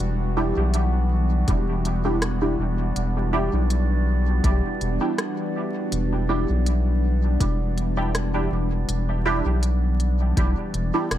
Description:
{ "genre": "ambient dub", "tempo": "81 BPM", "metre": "4/4", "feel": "swing 54% on 16ths", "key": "E minor", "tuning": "A4 = 439 Hz", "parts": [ { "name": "warbly tape-like pad", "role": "sustained chords", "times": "0.0-11.2 s", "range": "E3 to F#5", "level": "-29 LUFS", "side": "equal", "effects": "chorus, built-in reverb, phaser, vintage 12-bit sampler grit" }, { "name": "round analog bass", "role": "bass", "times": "0.0-11.2 s", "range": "E1 to B1", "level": "-22 LUFS", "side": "equal", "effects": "tube saturation" }, { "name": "drifting glass-harmonics texture", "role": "texture", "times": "0.0-11.2 s", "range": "G3", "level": "-32 LUFS", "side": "equal", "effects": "chorus, built-in reverb" }, { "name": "filtered dub chord stab", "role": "stabs", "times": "0.4-11.1 s", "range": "D4 to G4", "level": "-27 LUFS", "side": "right 2 dB", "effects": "phaser, ensemble chorus, dub echo" }, { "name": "organic electronic drum kit", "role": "drums", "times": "0.7-11.2 s", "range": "hi-hat, rim click", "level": "-30 LUFS", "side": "equal", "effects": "overdrive" }, { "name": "electronic kick drum", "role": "drums", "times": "1.5-10.5 s", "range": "none", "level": "-25 LUFS", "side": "equal", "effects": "overdrive" } ], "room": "digital ambience", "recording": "vinyl crackle", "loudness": "-20 LUFS", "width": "side -12 dB against mid", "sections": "0.0-11.2 A section", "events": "none", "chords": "0.0 Em7", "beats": "| 0.00 0.74 1.48 2.22 | 2.96 3.70 4.44 5.18 | 5.92 6.67 7.41 8.15 | 8.89 9.63 10.37 11.11" }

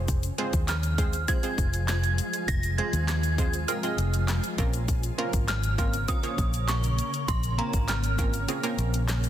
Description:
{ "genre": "dance-pop", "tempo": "100 BPM", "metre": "4/4", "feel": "straight", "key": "Bb minor", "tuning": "A4 = 441 Hz", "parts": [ { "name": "punchy chord stab", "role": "accompaniment", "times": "0.0-9.3 s", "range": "Ab3 to Eb5", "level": "-33 LUFS", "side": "right 3 dB", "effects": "chorus, sidechain pumping" }, { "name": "shimmering ambient pad", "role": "sustained chords", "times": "0.0-9.3 s", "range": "Db3 to Bb3", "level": "-36 LUFS", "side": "left 1 dB", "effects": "chorus, built-in reverb, sidechain pumping" }, { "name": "vintage muted fingered electric bass", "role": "bass", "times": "0.0-9.3 s", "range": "F1 to Eb2", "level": "-27 LUFS", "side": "equal", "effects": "sidechain pumping" }, { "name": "house drum kit", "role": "drums", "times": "0.1-9.3 s", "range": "handclaps, hi-hat, kick drum, snare drum", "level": "-29 LUFS", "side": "equal", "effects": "none" }, { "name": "egg shaker", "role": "percussion", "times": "0.1-9.3 s", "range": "none", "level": "-41 LUFS", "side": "left 12 dB", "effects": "none" }, { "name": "synth chime", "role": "melody", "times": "0.7-9.3 s", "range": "Bb5 to Bb6", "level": "-32 LUFS", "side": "right 2 dB", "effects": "ensemble chorus, digital delay" } ], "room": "digital ambience", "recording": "dense, heavily limited modern master", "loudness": "-24 LUFS", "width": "side -11 dB against mid", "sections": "0.0-9.3 A section", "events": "kick muted 8.5-9.3", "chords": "0.0 Fm; 4.6 Bbmadd9", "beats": "| 0.08 0.68 1.28 1.88 | 2.48 3.08 3.68 4.28 | 4.88 5.48 6.08 6.68 | 7.28 7.88 8.48 9.08" }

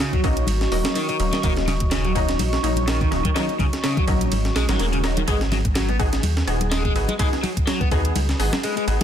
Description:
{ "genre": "breakbeat, breaks", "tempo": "125 BPM", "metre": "4/4", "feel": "swing 56% on 16ths", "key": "G# minor", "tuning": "A4 = 441 Hz", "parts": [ { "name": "dark analog pad", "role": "sustained chords", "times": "0.0-9.0 s", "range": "F#4 to C#6", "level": "-31 LUFS", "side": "right 2 dB", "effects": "chorus, phaser, vintage 12-bit sampler grit, sidechain pumping" }, { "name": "overdriven electric guitar", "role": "riff", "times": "0.0-9.0 s", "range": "C#3 to B3", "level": "-27 LUFS", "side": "left 1 dB", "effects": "tube saturation, phaser, dub echo" }, { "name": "breakbeat sampler-style drum kit", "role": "drums", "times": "0.0-9.0 s", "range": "hi-hat, kick drum, ride cymbal, snare drum", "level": "-24 LUFS", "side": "right 1 dB", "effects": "none" }, { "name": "electronic hi-hat", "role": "drums", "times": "0.0-9.0 s", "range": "none", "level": "-34 LUFS", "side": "right 2 dB", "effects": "overdrive" }, { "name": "congas", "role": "percussion", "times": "0.1-9.0 s", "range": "none", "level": "-31 LUFS", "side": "left 4 dB", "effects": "none" }, { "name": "orchestra-hit-like synth stab", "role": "stabs", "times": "0.2-9.0 s", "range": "F#3 to G#4", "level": "-27 LUFS", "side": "left 2 dB", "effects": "built-in reverb, dub echo" }, { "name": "dark detuned saw bass", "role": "bass", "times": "0.2-9.0 s", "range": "D#1 to D#2", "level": "-23 LUFS", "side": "equal", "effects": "none" }, { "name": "swell", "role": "sound effects", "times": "4.5-5.3 s", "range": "none", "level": "-35 LUFS", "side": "right 6 dB", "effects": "none" } ], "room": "little or no reverb", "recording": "dense, heavily limited modern master", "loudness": "-19 LUFS", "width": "side -9 dB against mid", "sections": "0.0-9.0 A section", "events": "kick drops out 4.3-5.3", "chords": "0.0 D#m7; 5.3 G#m7", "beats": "0.00 0.48 0.96 | 1.44 1.92 2.40 2.88 | 3.36 3.84 4.32 4.80 | 5.28 5.76 6.24 6.72 | 7.20 7.68 8.16 8.64" }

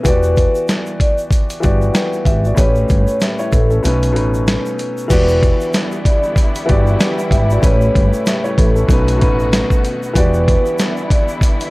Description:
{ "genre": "hip hop, boom-bap hip-hop", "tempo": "95 BPM", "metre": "4/4", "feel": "swing 58% on 16ths", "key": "E dorian", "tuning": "A4 = 441 Hz", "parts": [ { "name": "vibraphone with soft mallets", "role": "melody", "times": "0.0-11.3 s", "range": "A4 to D5", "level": "-20 LUFS", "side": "equal", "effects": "high-pass filter, low-pass filter" }, { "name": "dark grand piano", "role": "accompaniment", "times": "0.0-11.7 s", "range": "A2 to G5", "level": "-19 LUFS", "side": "left 1 dB", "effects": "cassette tape, high-pass filter, low-pass filter" }, { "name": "tube shaker", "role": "percussion", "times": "0.0-11.7 s", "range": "none", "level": "-38 LUFS", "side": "right 1 dB", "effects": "none" }, { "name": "woody fretless electric bass", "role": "bass", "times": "0.1-10.6 s", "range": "E1 to B1", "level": "-16 LUFS", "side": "equal", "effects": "tube saturation" }, { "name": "dusty soul sampler-style drum kit", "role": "drums", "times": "0.1-11.7 s", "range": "crash cymbal, hi-hat, kick drum, snare drum", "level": "-15 LUFS", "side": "equal", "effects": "none" }, { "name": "warm studio string section", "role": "sustained chords", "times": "5.1-11.7 s", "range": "C#3 to F#4", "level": "-26 LUFS", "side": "left 1 dB", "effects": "high-pass filter, low-pass filter" } ], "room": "small room ambience", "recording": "dry, gritty hardware recording, cassette tape", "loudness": "-12 LUFS", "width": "side -21 dB against mid", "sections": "0.0-5.1 A section; 5.1-11.7 B section", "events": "break 3.8-5.1", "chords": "0.1 Em7; 2.6 A7; 3.8 B7; 5.1 Em7; 7.6 A7; 8.9 B7; 10.2 Em7", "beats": "| 0.05 0.68 1.31 1.95 | 2.58 3.21 3.84 4.47 | 5.10 5.74 6.37 7.00 | 7.63 8.26 8.89 9.52 | 10.16 10.79 11.42" }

